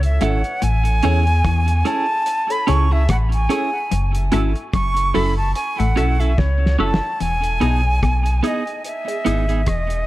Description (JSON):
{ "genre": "roots reggae", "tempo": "73 BPM", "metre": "4/4", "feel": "swing 56% on 16ths", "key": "E major", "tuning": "A4 = 439 Hz", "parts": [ { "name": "silver concert flute", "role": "melody", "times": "0.0-10.1 s", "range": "C#5 to C#6", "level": "-22 LUFS", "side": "right 1 dB", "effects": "tape echo" }, { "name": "clean electric guitar", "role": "riff", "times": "0.0-9.9 s", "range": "E2 to E3", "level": "-26 LUFS", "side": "left 5 dB", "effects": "lush chorus" }, { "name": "warm sub bass", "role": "bass", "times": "0.0-10.1 s", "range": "E1 to E2", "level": "-18 LUFS", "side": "equal", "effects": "none" }, { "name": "cloth-damped thuddy drum kit", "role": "drums", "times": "0.0-10.1 s", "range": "hi-hat, kick drum, rim click, snare drum", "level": "-25 LUFS", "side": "equal", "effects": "none" }, { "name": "clean electric guitar", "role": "accompaniment", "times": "0.2-9.6 s", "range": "B3 to A4", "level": "-25 LUFS", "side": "right 6 dB", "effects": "tape echo" }, { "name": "filtered dub chord stab", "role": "stabs", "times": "0.2-9.5 s", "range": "E4 to E5", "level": "-28 LUFS", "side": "left 2 dB", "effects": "phaser" } ], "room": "light reverb, small room reverb", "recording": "echo-heavy mix", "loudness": "-16 LUFS", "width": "side -16 dB against mid", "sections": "0.0-7.2 A section; 7.2-10.1 B section", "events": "flute solo 0.0-7.2; drum fill 6.4-7.2", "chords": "0.0 F#m7; 0.6 Amaj7; 3.9 F#m7; 7.2 Emaj7" }